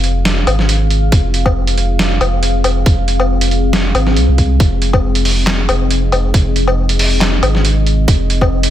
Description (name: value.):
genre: deep dubstep.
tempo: 138 BPM.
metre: 4/4.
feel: swing 54% on 16ths, half-time.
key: F minor.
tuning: A4 = 440 Hz.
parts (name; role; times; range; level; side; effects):
deep dark ambient pad; sustained chords; 0.0-8.7 s; C4 to F5; -19 LUFS; left 2 dB; chorus, built-in reverb.
saturated sub bass; bass; 0.0-8.7 s; F1 to C2; -14 LUFS; equal; none.
trip hop sampler-style drum kit; drums; 0.0-8.7 s; handclaps, hi-hat, snare drum, woodblock; -17 LUFS; equal; none.
electronic kick drum; drums; 1.1-8.5 s; none; -14 LUFS; equal; none.
room: little or no reverb.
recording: none.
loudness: -11 LUFS.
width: side -12 dB against mid.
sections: 0.0-8.7 A section.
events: none.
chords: 0.0 Fm.